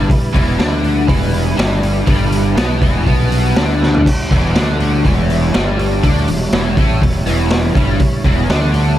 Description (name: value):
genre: psychedelic rock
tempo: 122 BPM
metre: 4/4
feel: straight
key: E dorian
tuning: A4 = 441 Hz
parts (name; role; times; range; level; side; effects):
- tonewheel organ; sustained chords; 0.0-9.0 s; G3 to C#5; -25 LUFS; right 4 dB; slow rotary speaker, chorus vibrato
- crunchy overdriven guitar; riff; 0.0-9.0 s; E2 to D4; -17 LUFS; left 1 dB; flanger, analog delay
- fuzz fingered electric bass; bass; 0.0-8.9 s; E1 to D2; -17 LUFS; equal; overdrive
- raw garage drum kit; drums; 0.1-8.9 s; crash cymbal, hi-hat, kick drum, snare drum, toms; -16 LUFS; equal; none
- congas; percussion; 0.7-8.9 s; none; barely audible; none; none
room: light reverb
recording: echo-heavy mix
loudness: -12 LUFS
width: side -12 dB against mid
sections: 0.0-9.0 A section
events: drum fill 3.8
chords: 0.0 Em